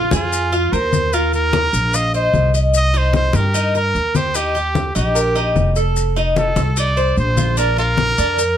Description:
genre	latin, Cuban son and guajira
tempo	149 BPM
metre	4/4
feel	straight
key	Eb major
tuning	A4 = 439 Hz
part	bright trumpet	melody	0.0-8.6 s	F4 to Eb5	-20 LUFS	right 1 dB	none
part	Cuban tres	arpeggios	0.0-8.6 s	D4 to F5	-20 LUFS	equal	none
part	upright bass	bass	0.0-8.6 s	F1 to G2	-19 LUFS	equal	none
part	congas	percussion	0.1-8.6 s	none	-22 LUFS	left 4 dB	none
part	maracas	percussion	0.1-8.6 s	none	-27 LUFS	left 7 dB	none
room	light reverb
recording	close, detailed microphones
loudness	-14 LUFS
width	side -10 dB against mid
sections	0.0-2.7 A section; 2.7-8.6 B section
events	none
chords	0.0 Bb5; 1.1 Ebsus2; 2.7 Cm7; 4.4 Eb; 6.0 F7; 7.6 Bb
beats	0.33 0.73 | 1.14 1.54 1.94 2.34 | 2.75 3.15 3.55 3.95 | 4.36 4.76 5.16 5.57 | 5.97 6.37 6.78 7.18 | 7.58 7.99 8.39

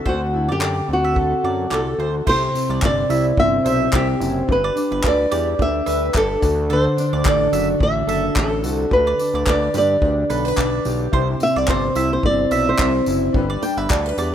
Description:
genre	acoustic pop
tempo	108 BPM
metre	4/4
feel	swing 55% on 16ths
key	G major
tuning	A4 = 441 Hz
part	clear upright piano	accompaniment	0.0-14.3 s	A3 to F#5	-33 LUFS	left 7 dB	none
part	fingerpicked plugged-in steel-string acoustic guitar	accompaniment	0.0-14.3 s	C3 to C5	-22 LUFS	equal	double-tracked left and right
part	flamenco guitar	melody	0.1-14.3 s	F#4 to G5	-20 LUFS	equal	none
part	mandolin	arpeggios	0.1-14.3 s	A4 to E5	-28 LUFS	right 6 dB	none
part	fat analog bass	bass	0.1-14.3 s	F#1 to G2	-24 LUFS	equal	none
part	unplugged drum kit	drums	0.1-14.3 s	crash cymbal, handclaps, kick drum, tambourine	-23 LUFS	equal	none
room	small room ambience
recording	rough home demo mix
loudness	-16 LUFS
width	side -10 dB against mid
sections	0.0-2.3 A section; 2.3-14.3 B section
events	none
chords	0.0 D7; 2.3 C; 4.5 G; 6.4 D; 8.9 G/D; 11.1 C; 13.3 G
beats	| 0.06 0.62 1.17 1.72 | 2.28 2.83 3.38 3.94 | 4.49 5.04 5.59 6.15 | 6.70 7.25 7.81 8.36 | 8.91 9.47 10.02 10.58 | 11.13 11.68 12.24 12.79 | 13.35 13.90

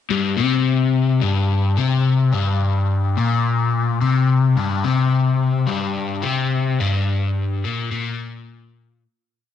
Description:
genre	rock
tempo	107 BPM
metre	4/4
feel	straight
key	G minor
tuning	A4 = 440 Hz
part	crunchy overdriven guitar	solo	0.1-9.0 s	G2 to C3	-17 LUFS	left 3 dB	phaser
room	light reverb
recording	nothing above 10.3 kHz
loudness	-17 LUFS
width	side -9 dB against mid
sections	0.1-9.0 riff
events	fade-out 6.8-9.0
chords	none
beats	| 0.10 0.66 1.22 1.78 | 2.34 2.90 3.45 4.01 | 4.57 5.13 5.68 6.24 | 6.80 7.36 7.92 8.48

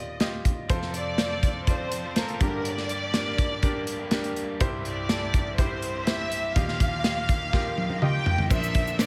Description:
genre	piano-driven pop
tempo	123 BPM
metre	4/4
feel	straight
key	F major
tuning	A4 = 439 Hz
part	warm studio violin section	melody	0.0-9.1 s	Bb4 to G5	-33 LUFS	equal	none
part	clear concert grand piano	accompaniment	0.0-9.1 s	C2 to Eb5	-34 LUFS	equal	none
part	modern studio drum kit	drums	0.2-9.1 s	crash cymbal, hi-hat, kick drum, snare drum, toms	-28 LUFS	equal	none
part	raw garage guitar	riff	0.7-9.1 s	G2 to Bb4	-39 LUFS	equal	overdrive
part	egg shaker	percussion	8.5-9.1 s	none	-44 LUFS	equal	none
room	light reverb, small room ambience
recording	none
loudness	-26 LUFS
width	mono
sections	0.0-8.5 A section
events	drum fill 7.5-8.5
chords	0.0 Ebadd9; 0.7 F; 2.4 Gm; 4.6 C; 6.6 Ebadd9; 8.5 Bbadd9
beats	0.21 | 0.70 1.19 1.68 2.17 | 2.65 3.14 3.63 4.12 | 4.61 5.10 5.58 6.07 | 6.56 7.05 7.53 8.02 | 8.51 8.99

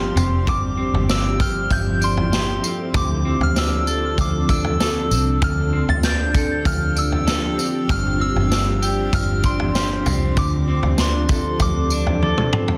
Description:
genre	dream pop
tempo	97 BPM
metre	4/4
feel	straight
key	D minor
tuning	A4 = 440 Hz
part	soft synth bell	melody	0.0-12.5 s	C6 to A6	-28 LUFS	equal	chorus, phaser, digital delay
part	granular cloud pad	sustained chords	0.0-12.8 s	F3 to A4	-30 LUFS	equal	built-in reverb
part	clean electric guitar	arpeggios	0.0-12.8 s	G2 to A4	-27 LUFS	equal	lush chorus, digital delay
part	vintage muted fingered electric bass	bass	0.0-12.5 s	F1 to D2	-25 LUFS	equal	none
part	vintage drum kit	drums	0.2-12.8 s	kick drum, snare drum, tambourine, toms	-25 LUFS	equal	none
part	vibraphone with medium mallets	texture	0.8-12.8 s	G3 to A4	-36 LUFS	equal	none
room	light reverb, small room reverb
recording	dense, heavily limited modern master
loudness	-20 LUFS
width	mono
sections	0.0-12.8 A section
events	drum fill 12.2-12.8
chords	0.0 G7sus4; 2.9 Dm7; 7.9 G7sus4; 10.4 Dm7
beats	| 0.47 1.09 1.71 2.33 | 2.95 3.56 4.18 4.80 | 5.42 6.04 6.66 7.28 | 7.89 8.51 9.13 9.75 | 10.37 10.99 11.61 12.22

